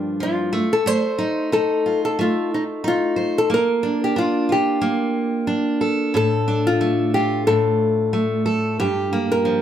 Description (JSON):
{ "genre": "pop", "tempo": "91 BPM", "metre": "4/4", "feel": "swing 55% on 16ths", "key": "unclear", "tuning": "A4 = 441 Hz", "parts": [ { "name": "nylon-string guitar", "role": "melody", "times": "0.0-9.6 s", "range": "Eb4 to C5", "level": "-20 LUFS", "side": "left 2 dB", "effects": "none" }, { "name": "picked steel-string acoustic guitar", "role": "accompaniment", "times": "0.0-9.6 s", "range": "G2 to C5", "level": "-21 LUFS", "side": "right 1 dB", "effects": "none" } ], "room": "moderate studio ambience, RT60 0.5 s", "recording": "heard from further back in the room", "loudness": "-18 LUFS", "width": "side -10 dB against mid", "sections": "0.0-9.6 A section", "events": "none", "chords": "0.0 Gm7; 0.5 F7/A; 3.5 Bbmaj7; 6.1 Dm/A; 8.8 Gm7" }